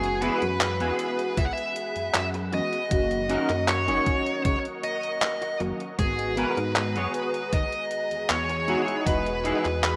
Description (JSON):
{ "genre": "vaporwave", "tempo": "78 BPM", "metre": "4/4", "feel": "straight", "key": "unclear", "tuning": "A4 = 440 Hz", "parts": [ { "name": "high-gain lead guitar", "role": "melody", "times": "0.0-10.0 s", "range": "G#4 to F#5", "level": "-30 LUFS", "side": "equal", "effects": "distortion, tape echo" }, { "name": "warbly lo-fi synth keys", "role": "accompaniment", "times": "0.0-10.0 s", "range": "D#3 to D#5", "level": "-35 LUFS", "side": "equal", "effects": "ensemble chorus, tape echo" }, { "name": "soft string machine", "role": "sustained chords", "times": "0.1-10.0 s", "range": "G#4 to D#6", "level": "-40 LUFS", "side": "equal", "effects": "ensemble chorus" }, { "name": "semi-hollow electric guitar", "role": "riff", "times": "0.0-9.9 s", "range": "B3 to C#5", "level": "-32 LUFS", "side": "equal", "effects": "ensemble chorus, tape echo" }, { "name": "chorused synth bass", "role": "bass", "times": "0.0-10.0 s", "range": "E1 to G#2", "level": "-34 LUFS", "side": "equal", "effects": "none" }, { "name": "detuned 8-bit digital drum machine", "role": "drums", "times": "0.0-10.0 s", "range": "handclaps, hi-hat", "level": "-31 LUFS", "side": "equal", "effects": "none" }, { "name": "electronic kick drum", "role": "drums", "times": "1.4-9.2 s", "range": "none", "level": "-29 LUFS", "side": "equal", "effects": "none" } ], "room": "moderate lush hall reverb, RT60 2.6 s", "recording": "rough home demo mix", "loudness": "-26 LUFS", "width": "mono", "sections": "0.0-10.0 A section", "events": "none", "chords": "0.0 F#9sus4; 2.9 D#m7/F#; 6.0 G#m9; 8.7 Emaj9" }